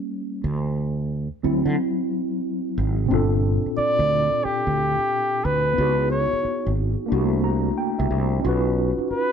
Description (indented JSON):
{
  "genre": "R&B, neo-soul",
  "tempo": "90 BPM",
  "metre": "4/4",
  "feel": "swing 64% on 16ths",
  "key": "unclear",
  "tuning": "A4 = 440 Hz",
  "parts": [
    { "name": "mellow tine electric piano", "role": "accompaniment", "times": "0.0-9.3 s", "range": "Bb2 to Bb5", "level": "-24 LUFS", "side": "equal", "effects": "medium stereo tremolo" },
    { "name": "fretless electric bass", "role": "bass", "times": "0.4-9.1 s", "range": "G1 to D3", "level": "-24 LUFS", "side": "right 1 dB", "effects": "none" },
    { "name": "trumpet with bucket mute", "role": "melody", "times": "3.8-9.3 s", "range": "G4 to D5", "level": "-21 LUFS", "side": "equal", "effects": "none" }
  ],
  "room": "moderate stone room reverb, RT60 1.1 s",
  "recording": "band playing live in one room",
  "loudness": "-20 LUFS",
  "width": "side -7 dB against mid",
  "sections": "0.0-3.1 A section; 3.1-9.3 B section",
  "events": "tine electric piano solo 0.0-3.1; tine electric piano fill 7.1-8.4",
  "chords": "0.4 D7; 3.1 Gm7; 5.8 C#m7; 7.1 C13; 8.4 Badd9"
}